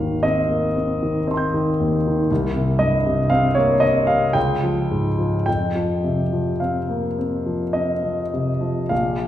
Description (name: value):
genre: classical, impressionist solo piano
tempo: 48-61 BPM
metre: 3/4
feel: rubato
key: F minor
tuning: A4 = 443 Hz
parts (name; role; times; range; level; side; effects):
- clear concert grand piano; solo; 0.0-9.3 s; Ab1 to G6; -18 LUFS; equal; none
room: wet recital hall reverb, RT60 1.7 s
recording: heard from further back in the room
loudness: -18 LUFS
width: side -12 dB against mid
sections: 0.0-8.9 A section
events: none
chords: 0.0 Abmaj7; 2.3 C5; 4.4 Db; 5.5 Fsus2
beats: 0.24 1.28 | 2.30 3.29 4.35 | 5.47 6.61 7.74 | 8.91